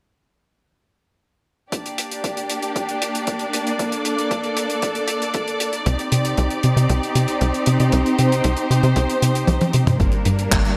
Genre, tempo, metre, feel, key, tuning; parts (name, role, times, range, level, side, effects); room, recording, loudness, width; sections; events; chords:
italo disco; 116 BPM; 4/4; straight; G minor; A4 = 440 Hz
rich studio string section; sustained chords; 1.7-10.8 s; G3 to D5; -24 LUFS; equal; vintage 12-bit sampler grit
damped 70s drum kit; drums; 1.7-10.8 s; handclaps, hi-hat, toms; -27 LUFS; equal; studio reverb
electronic kick drum; drums; 1.7-10.6 s; -26 LUFS; equal; high-pass filter on kick, studio reverb
tight sequencer bass; bass; 5.9-10.6 s; G1 to C3; -20 LUFS; equal; tube saturation
moderate lush hall reverb, RT60 2.4 s; bright 1980s-style digital production; -20 LUFS; mono
1.7-10.0 A section
drum fill 9.5-10.0
1.7 Gm; 5.9 Cmadd9; 10.0 Gm